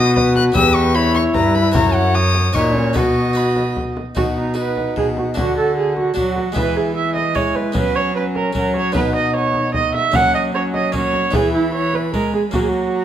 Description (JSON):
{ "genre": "classical, renaissance-style consort dance", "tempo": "150 BPM", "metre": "3/4", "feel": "straight", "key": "B major", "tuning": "A4 = 438 Hz", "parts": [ { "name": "warm violin", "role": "melody", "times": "0.0-13.0 s", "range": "F#5 to F#6", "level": "-25 LUFS", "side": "left 5 dB", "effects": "none" }, { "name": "warm viola", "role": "second line", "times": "0.0-13.0 s", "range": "D#4 to F#5", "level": "-20 LUFS", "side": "right 5 dB", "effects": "none" }, { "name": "harpsichord", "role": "accompaniment", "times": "0.0-13.0 s", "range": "E2 to B4", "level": "-27 LUFS", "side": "left 2 dB", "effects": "none" }, { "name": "warm trombone", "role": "accompaniment", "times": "0.0-13.0 s", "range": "C#4 to G4", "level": "-22 LUFS", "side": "left 2 dB", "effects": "none" }, { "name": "warm cello", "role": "bass", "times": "0.0-13.0 s", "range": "E2 to G#3", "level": "-21 LUFS", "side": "right 1 dB", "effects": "none" }, { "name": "frame drum", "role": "percussion", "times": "0.2-12.7 s", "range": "none", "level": "-25 LUFS", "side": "left 1 dB", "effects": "none" } ], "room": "moderate large studio reverb, RT60 1.4 s", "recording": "none", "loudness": "-15 LUFS", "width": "side -10 dB against mid", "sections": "0.0-4.2 A section; 4.2-13.0 B section", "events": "none", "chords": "0.0 B; 0.6 Em; 1.7 F#; 3.0 B; 5.4 D; 6.6 E; 7.8 F#sus4; 8.6 F#; 9.0 B; 10.1 F#; 11.3 E; 12.5 F#" }